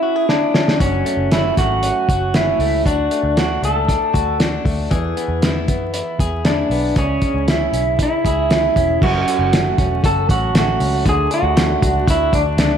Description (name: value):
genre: jangly indie pop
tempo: 117 BPM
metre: 4/4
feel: straight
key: F# minor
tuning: A4 = 441 Hz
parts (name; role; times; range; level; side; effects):
- electric guitar through a small old amp; melody; 0.0-12.8 s; C#4 to A4; -18 LUFS; right 1 dB; analog delay
- direct-recorded clean electric guitar; arpeggios; 0.0-12.8 s; F#2 to G#4; -24 LUFS; left 3 dB; none
- cloth-damped thuddy drum kit; drums; 0.3-12.7 s; crash cymbal, hi-hat, kick drum, snare drum; -18 LUFS; equal; none
- vintage muted picked electric bass; bass; 0.8-12.8 s; E1 to F#2; -22 LUFS; equal; none
room: moderate lush hall reverb, RT60 1.6 s, small room ambience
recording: big arena sound, vinyl crackle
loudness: -15 LUFS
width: side -8 dB against mid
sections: 0.0-9.0 A section; 9.0-12.8 B section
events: drum fill 0.3-0.8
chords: 0.0 C#m; 0.8 F#m; 2.9 D; 4.9 E; 7.0 C#m; 9.0 F#m; 11.1 D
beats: 0.29 | 0.81 1.32 1.83 2.35 | 2.86 3.37 3.88 4.40 | 4.91 5.42 5.94 6.45 | 6.96 7.47 7.99 8.50 | 9.01 9.52 10.03 10.54 | 11.05 11.57 12.08 12.59